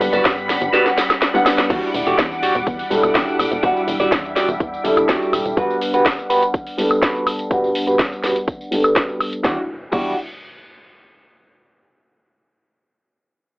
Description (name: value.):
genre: filtered disco house.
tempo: 124 BPM.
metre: 4/4.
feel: straight.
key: E minor.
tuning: A4 = 440 Hz.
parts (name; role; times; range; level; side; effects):
dark concert grand piano; accompaniment; 0.0-10.1 s; G3 to F#5; -20 LUFS; equal; phaser, sidechain pumping, low-pass filter.
string machine, full ensemble; sustained chords; 0.0-5.6 s; G3 to D6; -26 LUFS; equal; ensemble chorus, sidechain pumping, low-pass filter.
plucky analog bass; bass; 0.0-5.5, 9.4-10.2 s; E1 to G2; -26 LUFS; equal; sidechain pumping, low-pass filter.
house drum kit; drums; 0.0-10.0 s; crash cymbal, hi-hat, snare drum, tambourine, woodblock; -20 LUFS; equal; sidechain pumping on hats, cassette tape, sidechain pumping on perc, sidechain pumping on cymbals.
clean electric guitar; riff; 0.1-10.2 s; F#4 to G5; -20 LUFS; right 1 dB; phaser, sidechain pumping, low-pass filter.
electronic kick drum; drums; 0.2-10.0 s; none; -23 LUFS; equal; cassette tape.
impact; sound effects; 1.7-3.6, 9.4-11.4 s; none; -39 LUFS; equal; none.
room: moderate studio ambience, RT60 0.5 s.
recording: home recording on cassette, telephone sound.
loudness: -16 LUFS.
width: side -27 dB against mid.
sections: 0.0-1.7 A section; 1.7-9.4 B section; 9.4-11.4 C section.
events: drop 0.0-1.7; drum fill 0.7-1.7; impact 1.7-3.6; filter sweep 1.7-9.4; clean electric guitar fill 4.8-5.6.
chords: 0.0 Gmaj7; 1.7 Em9; 5.6 Gmaj7; 9.4 Em9.